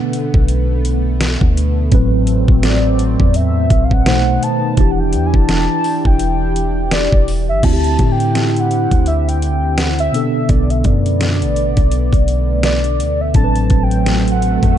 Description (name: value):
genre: contemporary R&B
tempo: 84 BPM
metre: 4/4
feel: swing 58% on 16ths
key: A dorian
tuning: A4 = 440 Hz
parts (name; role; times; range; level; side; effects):
- warm velvety synth lead; melody; 0.0-14.8 s; D5 to A5; -21 LUFS; equal; chorus
- mellow tine electric piano; accompaniment; 0.0-14.8 s; A2 to C5; -19 LUFS; equal; medium stereo tremolo
- chorused pulse-width pad; sustained chords; 0.0-14.8 s; D3 to G4; -22 LUFS; equal; none
- smooth R&B drum kit; drums; 0.1-14.8 s; crash cymbal, hi-hat, kick drum, snare drum; -16 LUFS; equal; none
- marimba with soft mallets; texture; 0.1-1.8, 13.3-14.8 s; D4 to A4; -32 LUFS; left 2 dB; none
- warm 808-style bass; bass; 0.3-14.8 s; E1 to A2; -17 LUFS; equal; none
- swell; sound effects; 13.9-14.8 s; none; -25 LUFS; right 2 dB; none
room: digital ambience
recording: dark, warm production, nothing above 10.9 kHz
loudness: -12 LUFS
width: side -10 dB against mid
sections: 0.0-7.6 A section; 7.6-14.8 B section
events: swell 13.9-14.8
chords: 0.0 Bm7; 1.9 Am69; 4.1 B7b9; 4.8 Em7; 7.6 D9sus4; 10.1 Bm7; 13.3 Am69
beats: 0.49 1.21 | 1.92 2.63 3.35 4.06 | 4.78 5.49 6.21 6.92 | 7.63 8.35 9.06 9.78 | 10.49 11.21 11.92 12.63 | 13.35 14.06 14.78